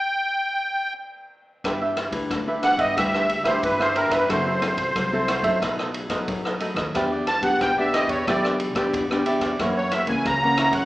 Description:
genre	samba and choro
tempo	90 BPM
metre	4/4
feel	straight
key	G major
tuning	A4 = 440 Hz
part	musette accordion	melody	0.0-10.8 s	Bb4 to A#5	-22 LUFS	equal	none
part	cavaquinho	accompaniment	1.6-10.8 s	D4 to F#5	-27 LUFS	right 2 dB	none
part	nylon-string guitar	accompaniment	1.6-10.8 s	F#2 to B4	-26 LUFS	left 1 dB	none
part	upright bass	bass	1.6-10.8 s	F#1 to F#2	-34 LUFS	equal	none
part	swinging big-band drum kit	drums	1.6-10.8 s	kick drum, ride cymbal, rim click	-28 LUFS	equal	none
room	wet recital hall reverb, RT60 1.5 s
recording	recorded in a church or concert hall, small speaker sound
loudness	-20 LUFS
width	side -17 dB against mid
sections	0.0-1.6 A section; 1.6-10.8 B section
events	stop 0.0-1.6; accordion solo 1.6-10.8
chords	0.0 N.C.; 1.6 G6; 4.3 F#m7b5; 5.6 B7; 6.9 Em7; 9.6 F#7

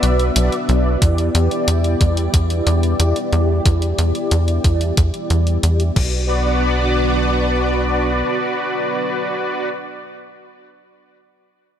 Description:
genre	synthwave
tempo	91 BPM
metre	4/4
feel	straight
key	B minor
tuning	A4 = 442 Hz
part	analog string pad	sustained chords	0.0-9.7 s	B3 to E5	-22 LUFS	left 1 dB	ensemble chorus, sidechain pumping
part	mellow synth brass	stabs	0.0-9.7 s	E4 to D5	-23 LUFS	equal	chorus, digital delay
part	tight sequencer bass	bass	0.0-8.2 s	B1 to E2	-17 LUFS	equal	none
part	gated 80s digital drum machine	drums	0.0-6.1 s	crash cymbal, hi-hat	-24 LUFS	left 1 dB	none
part	electronic kick drum	drums	1.0-6.1 s	none	-17 LUFS	equal	none
room	light reverb, digital ambience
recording	bright 1980s-style digital production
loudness	-15 LUFS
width	side -9 dB against mid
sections	0.0-6.3 A section; 6.3-8.9 B section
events	filter sweep on analog synth pad 0.0-6.3; filter sweep on analog polysynth 0.0-6.3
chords	0.0 Bm; 1.0 Em7; 6.0 Bm

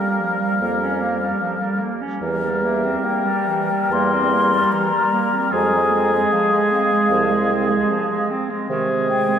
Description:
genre	classical, slow romantic movement for wind quintet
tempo	67-77 BPM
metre	4/4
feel	rubato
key	F minor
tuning	A4 = 441 Hz
part	mellow hollow concert flute	melody	0.0-9.4 s	E5 to C6	-23 LUFS	left 4 dB	none
part	warm oboe	second line	0.0-9.4 s	Ab4 to Bb4	-22 LUFS	left 1 dB	none
part	bright clarinet	accompaniment	0.0-9.4 s	Eb3 to Db4	-25 LUFS	right 5 dB	none
part	clear French horn	accompaniment	0.0-9.4 s	G3 to Ab3	-24 LUFS	right 1 dB	none
part	mellow bassoon	bass	0.6-9.4 s	C2 to C3	-25 LUFS	right 1 dB	none
room	wet church reverb, RT60 3.6 s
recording	none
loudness	-17 LUFS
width	side -8 dB against mid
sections	0.0-9.4 A section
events	none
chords	0.0 Gm7b5/F; 2.2 C7/E; 5.5 Fm; 8.7 Ab/C

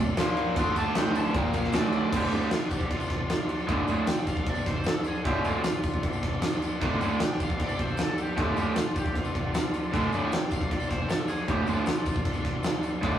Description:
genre	garage rock duo or trio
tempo	154 BPM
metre	4/4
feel	straight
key	D minor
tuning	A4 = 441 Hz
part	overdriven combo organ	sustained chords	0.0-13.2 s	F4 to F5	-39 LUFS	left 1 dB	none
part	raw garage guitar	riff	0.0-13.2 s	D2 to D4	-27 LUFS	right 1 dB	overdrive
part	overdriven slide guitar	melody	0.2-13.2 s	F4 to C6	-35 LUFS	left 1 dB	analog delay
part	oversized low-tuned drum kit	drums	0.2-13.1 s	crash cymbal, kick drum, snare drum	-27 LUFS	equal	none
part	tambourine	percussion	0.2-13.2 s	none	-49 LUFS	left 5 dB	none
room	light reverb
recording	rough rehearsal-room recording, small room ambience, faint mains hum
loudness	-25 LUFS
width	side -10 dB against mid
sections	0.0-2.1 A section; 2.1-13.2 B section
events	none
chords	0.2 Bb5; 0.6 Dm; 1.3 Bb5; 1.7 Dm

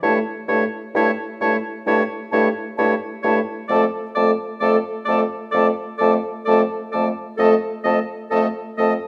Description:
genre	classical, slow romantic movement for wind quintet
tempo	65 BPM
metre	4/4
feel	rubato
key	unclear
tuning	A4 = 442 Hz
part	concert flute	melody	0.0-8.9 s	A5	-31 LUFS	equal	none
part	clear oboe	second line	0.0-8.9 s	C#5 to Eb5	-27 LUFS	equal	none
part	clear French horn	accompaniment	0.0-8.9 s	A3	-26 LUFS	equal	none
part	clear clarinet	accompaniment	0.0-8.9 s	E4 to A4	-29 LUFS	equal	none
part	mellow bassoon	bass	0.0-9.0 s	F2 to G2	-25 LUFS	equal	none
room	moderate recital hall reverb, RT60 1.4 s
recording	none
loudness	-20 LUFS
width	mono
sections	0.0-9.1 A section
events	none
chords	0.0 A7/G; 3.7 Dm/F

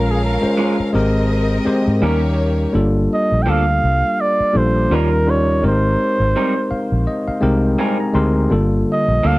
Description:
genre	soul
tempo	83 BPM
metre	4/4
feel	swing 58% on 16ths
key	G phrygian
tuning	A4 = 441 Hz
part	mellow flugelhorn	melody	0.0-9.4 s	Ab4 to G5	-20 LUFS	right 2 dB	tape echo
part	warm studio violin section	second line	0.0-2.7 s	Bb3 to F5	-25 LUFS	left 1 dB	none
part	tine electric piano	accompaniment	0.0-9.4 s	D3 to C6	-18 LUFS	left 1 dB	none
part	vintage muted fingered electric bass	bass	0.0-9.4 s	G1 to Ab2	-18 LUFS	equal	none
part	electric guitar through a small old amp	riff	0.6-9.4 s	F3 to Bb4	-21 LUFS	right 3 dB	wide subtle chorus
room	little or no reverb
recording	dry, close 1970s-style studio recording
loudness	-14 LUFS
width	side -19 dB against mid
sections	0.0-2.7 A section; 2.7-9.4 B section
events	tine electric piano fill 6.4-8.5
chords	0.0 Bbm7; 0.9 Abmaj9; 2.0 Eb7; 2.7 Gm9; 4.9 Eb9; 5.6 Abmaj9; 8.5 Gm9

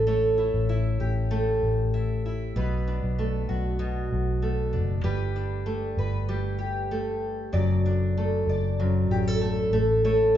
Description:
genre	acoustic pop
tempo	96 BPM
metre	4/4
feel	straight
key	unclear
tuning	A4 = 440 Hz
part	fingerpicked twelve-string acoustic guitar	accompaniment	0.0-10.4 s	F#2 to D5	-26 LUFS	right 1 dB	none
part	vintage muted fingered electric bass	bass	0.0-10.4 s	F#1 to B1	-26 LUFS	left 1 dB	none
room	wet large studio reverb, RT60 1.2 s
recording	band playing live in one room, nothing above 7.5 kHz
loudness	-23 LUFS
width	side -11 dB against mid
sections	0.0-5.0 A section; 5.0-10.4 B section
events	none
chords	0.0 A7; 2.6 Bm7; 5.0 Gadd9; 7.5 D/F#; 9.7 A

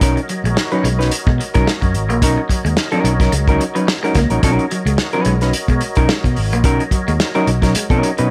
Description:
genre	funk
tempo	109 BPM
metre	4/4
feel	swing 56% on 16ths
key	unclear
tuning	A4 = 441 Hz
part	hollow-body jazz guitar	accompaniment	0.0-8.3 s	F#3 to B4	-21 LUFS	equal	none
part	percussive tonewheel organ	sustained chords	0.0-8.3 s	F#4 to D#5	-28 LUFS	equal	chorus vibrato, slow rotary speaker
part	fingered electric bass	bass	0.0-8.3 s	G#1 to B2	-20 LUFS	equal	none
part	warm soul drum kit	drums	0.0-8.3 s	hi-hat, kick drum, snare drum	-20 LUFS	equal	none
part	semi-hollow electric guitar	riff	0.2-8.3 s	F#3 to A#3	-27 LUFS	equal	lush chorus
room	small room reverb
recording	none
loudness	-16 LUFS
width	mono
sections	0.0-8.3 A section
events	none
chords	0.0 Bmaj9

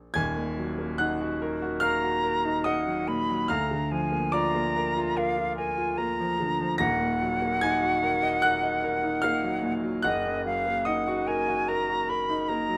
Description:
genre	classical, romantic duo for flute and grand piano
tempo	73 BPM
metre	4/4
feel	rubato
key	Eb minor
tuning	A4 = 440 Hz
part	clear concert grand piano	accompaniment	0.0-12.8 s	Eb1 to Bb6	-29 LUFS	equal	none
part	silver concert flute	melody	1.8-12.8 s	Eb5 to Cb6	-30 LUFS	equal	none
room	moderate stone room reverb, RT60 1.1 s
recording	none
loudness	-27 LUFS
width	mono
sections	0.1-12.8 A section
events	none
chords	0.1 Ebm; 3.5 Bb/D; 6.8 Ebm; 10.0 Ebm/Gb

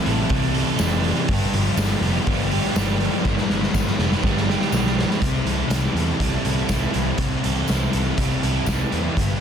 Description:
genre	rock, shoegaze and dream pop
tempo	122 BPM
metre	4/4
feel	straight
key	C major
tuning	A4 = 441 Hz
part	crunchy overdriven guitar	riff	0.0-9.4 s	G2 to A4	-26 LUFS	right 13 dB	reverse reverb
part	sludgy distorted guitar	riff	0.0-9.4 s	G2 to G4	-28 LUFS	right 1 dB	overdrive
part	thick fuzz guitar	riff	0.0-9.4 s	G2 to A4	-26 LUFS	left 11 dB	distortion, lush chorus
part	vintage muted picked electric bass	bass	0.1-9.3 s	F1 to E2	-25 LUFS	equal	none
part	raw garage drum kit	drums	0.1-9.3 s	hi-hat, kick drum, snare drum	-24 LUFS	equal	none
part	tambourine	percussion	0.8-8.8 s	none	-36 LUFS	left 14 dB	none
room	small room ambience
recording	dense, heavily limited modern master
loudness	-19 LUFS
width	side -8 dB against mid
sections	0.0-5.2 A section; 5.2-9.4 B section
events	drum fill 3.3-5.2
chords	0.0 C6; 1.3 G7; 5.2 C6

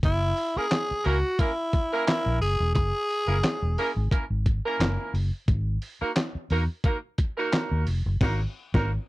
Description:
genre	funk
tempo	88 BPM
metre	4/4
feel	swing 56% on 16ths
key	unclear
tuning	A4 = 441 Hz
part	raspy tenor saxophone	melody	0.0-4.1 s	Fb4 to Ab4	-27 LUFS	equal	none
part	vintage muted fingered electric bass	bass	0.0-9.0 s	Fb1 to Fb2	-25 LUFS	equal	none
part	lo-fi sampler-style drum kit	drums	0.0-8.9 s	crash cymbal, handclaps, hi-hat, kick drum, snare drum	-26 LUFS	equal	none
part	warm horn section	second line	0.6-8.9 s	Bb3 to Bb4	-29 LUFS	right 2 dB	none
room	little or no reverb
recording	dry, close 1970s-style studio recording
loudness	-23 LUFS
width	side -19 dB against mid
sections	0.0-9.1 A section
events	band accent 8.2-9.1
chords	0.0 Gb9; 5.5 Absus2

